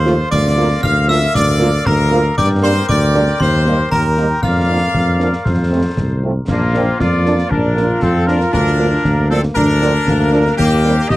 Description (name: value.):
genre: military-style march for wind band.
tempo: 117 BPM.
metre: 2/4.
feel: straight.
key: Bb major.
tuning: A4 = 440 Hz.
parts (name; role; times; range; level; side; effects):
clear trumpet section; melody; 0.0-11.2 s; F4 to F5; -18 LUFS; equal; none.
glockenspiel with brass mallets; second line; 0.0-5.9 s; Bb5 to F6; -24 LUFS; equal; none.
warm woodwind section; second line; 0.0-11.2 s; Bb3 to G5; -23 LUFS; left 2 dB; none.
mellow tuba; bass; 0.0-11.2 s; Bb1 to G2; -16 LUFS; equal; none.
mellow French horn section; accompaniment; 0.1-10.9 s; F3 to F4; -18 LUFS; right 2 dB; none.
warm trombone section; sustained chords; 0.1-11.2 s; C3 to F4; -22 LUFS; left 1 dB; none.
concert snare drum, clash cymbals and concert bass drum; drums; 0.1-11.2 s; none; -22 LUFS; equal; vintage 12-bit sampler grit.
room: little or no reverb.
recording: cassette tape.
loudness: -12 LUFS.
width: side -17 dB against mid.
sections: 0.0-6.5 A section; 6.5-11.2 B section.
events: none.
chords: 0.3 Bb/D; 2.4 Gm; 3.4 Cm7/Eb; 4.4 Bb/F; 5.5 F; 6.5 Bb; 8.5 Bb/D; 10.6 Cm7/Eb.